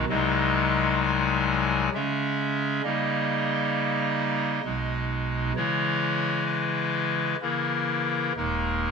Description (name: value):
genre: classical, chorale-style piece for pipe organ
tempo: 66 BPM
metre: 3/4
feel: rubato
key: unclear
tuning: A4 = 444 Hz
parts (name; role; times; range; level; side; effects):
- pipe organ, clarinet reed; solo; 0.0-8.9 s; D#1 to G#5; -23 LUFS; left 1 dB; none
room: wet stone room reverb, RT60 1.1 s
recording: none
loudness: -23 LUFS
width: side -5 dB against mid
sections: 0.0-8.9 A section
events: none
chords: 0.1 G#7/B#; 1.9 C#m; 2.8 D#7/C#; 4.6 G#m/B; 5.5 C#m; 7.4 A#dim/C#; 8.3 D#sus4